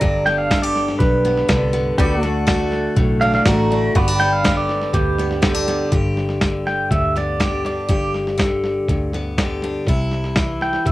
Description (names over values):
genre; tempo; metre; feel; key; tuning
honky-tonk and classic country; 122 BPM; 4/4; straight; G major; A4 = 440 Hz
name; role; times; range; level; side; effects
pedal steel guitar; second line; 0.0-10.9 s; G4 to Bb5; -20 LUFS; right 2 dB; cassette tape
picked steel-string acoustic guitar; accompaniment; 0.0-10.9 s; G2 to G4; -22 LUFS; left 2 dB; cassette tape
pedal steel guitar; sustained chords; 0.0-5.9 s; A3 to D5; -22 LUFS; right 1 dB; lush chorus, cassette tape
vintage muted fingered electric bass; bass; 0.0-10.9 s; G1 to D2; -23 LUFS; equal; none
boom bap sampler-style drum kit; drums; 0.0-10.9 s; hi-hat, kick drum, snare drum; -21 LUFS; equal; cassette tape
room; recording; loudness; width
light reverb; home recording on cassette; -16 LUFS; side -16 dB against mid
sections
0.0-5.9 A section; 5.9-10.9 B section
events
pedal steel guitar solo 0.0-5.9, 5.9-10.9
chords
0.0 G; 2.0 D; 4.0 G; 9.9 C